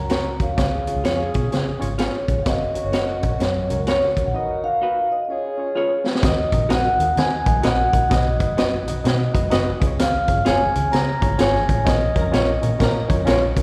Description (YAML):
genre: uptempo 1960s-style soul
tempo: 128 BPM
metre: 4/4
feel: swing 63% on 8ths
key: unclear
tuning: A4 = 439 Hz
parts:
  - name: vibraphone with soft mallets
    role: melody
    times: 0.0-13.2 s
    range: A#4 to A#5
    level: -25 LUFS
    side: equal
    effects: slapback echo
  - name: mellow horn section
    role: second line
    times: 0.0-6.0, 12.2-13.2 s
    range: A#3 to A#4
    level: -34 LUFS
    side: equal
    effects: none
  - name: barky reed electric piano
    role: accompaniment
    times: 0.0-13.6 s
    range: C#4 to F#5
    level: -31 LUFS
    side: equal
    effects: overdrive, fast tremolo, slapback echo
  - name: vintage muted fingered electric bass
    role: bass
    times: 0.0-13.6 s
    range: E#1 to D#3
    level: -26 LUFS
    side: equal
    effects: none
  - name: semi-hollow electric guitar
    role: stabs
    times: 0.1-13.4 s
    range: D#4 to D#5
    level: -26 LUFS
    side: equal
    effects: tremolo, slapback echo
  - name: vintage drum kit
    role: drums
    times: 0.1-13.6 s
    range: hi-hat, kick drum, snare drum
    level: -25 LUFS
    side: equal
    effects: none
  - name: congas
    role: percussion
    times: 6.2-13.6 s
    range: none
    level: -37 LUFS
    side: equal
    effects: none
  - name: glockenspiel with hard plastic mallets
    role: second line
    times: 6.3-13.2 s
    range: D#6 to A#6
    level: -37 LUFS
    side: equal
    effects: slapback echo
room: light reverb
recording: live gig heard through the venue's PA, recital hall reverb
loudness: -20 LUFS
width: mono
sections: 0.0-6.2 A section; 6.2-13.6 B section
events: drum fill 5.8-6.2; band accent 11.9-13.6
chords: 0.0 F#; 0.6 C#; 2.5 F#; 4.3 B; 5.3 C#; 6.2 D#m; 8.1 B; 9.8 C#; 11.9 A#m